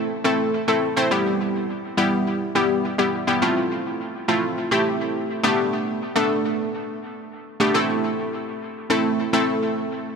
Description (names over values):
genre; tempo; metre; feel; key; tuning
pop; 104 BPM; 4/4; straight; A minor; A4 = 440 Hz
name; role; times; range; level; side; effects
glassy wavetable pluck; solo; 0.0-10.1 s; G3 to C5; -20 LUFS; equal; chorus, dub echo
room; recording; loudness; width
moderate plate reverb, RT60 3.4 s; echo-heavy mix; -20 LUFS; side -5 dB against mid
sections
0.0-3.4 A section; 3.4-10.2 B section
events
build-up 3.4-10.2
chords
0.0 Am; 1.1 Em/G; 3.4 Fmaj7; 5.4 Gadd9; 7.7 Am